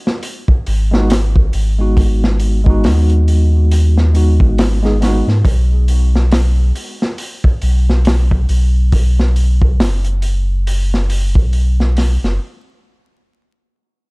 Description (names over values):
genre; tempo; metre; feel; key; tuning
trip hop; 69 BPM; 4/4; swing 59% on 16ths; unclear; A4 = 440 Hz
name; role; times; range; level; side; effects
crunchy breakbeat drum kit; drums; 0.1-12.4 s; hi-hat, kick drum, snare drum; -16 LUFS; equal; none
warm sub bass; bass; 0.7-12.4 s; F#1 to G#2; -12 LUFS; equal; none
tine electric piano; accompaniment; 0.9-5.3 s; G#3 to G#4; -20 LUFS; equal; tremolo, vintage 12-bit sampler grit, low-pass filter, tape echo
room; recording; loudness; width
small room ambience; dark, warm production, vinyl crackle; -11 LUFS; side -28 dB against mid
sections
0.0-14.1 A section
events
none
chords
0.0 G#m7; 5.4 B5; 12.4 N.C.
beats
0.23 1.10 | 1.97 2.84 3.71 4.58 | 5.45 6.31 7.18 8.05 | 8.92 9.79 10.66 11.53 | 12.40